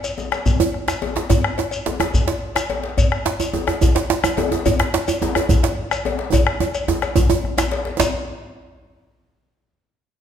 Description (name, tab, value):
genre	west african traditional, West African drum ensemble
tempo	143 BPM (dotted quarters)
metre	12/8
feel	straight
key	none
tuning	none
part	cowbell	percussion	0.0-8.1 s	none	-27 LUFS	left 5 dB	none
part	djembe	percussion	0.0-8.1 s	none	-25 LUFS	left 4 dB	none
part	shekere	percussion	0.0-8.1 s	none	-28 LUFS	left 2 dB	none
part	bombo	percussion	0.3-8.1 s	none	-22 LUFS	equal	none
part	djembe	percussion	0.6-8.1 s	none	-22 LUFS	right 6 dB	none
room	wet recital hall reverb, RT60 1.6 s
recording	minimal, uncompressed stereo recording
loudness	-17 LUFS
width	side -9 dB against mid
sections	0.0-8.0 A section; 8.0-9.7 B section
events	drum fill 6.3-8.0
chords	none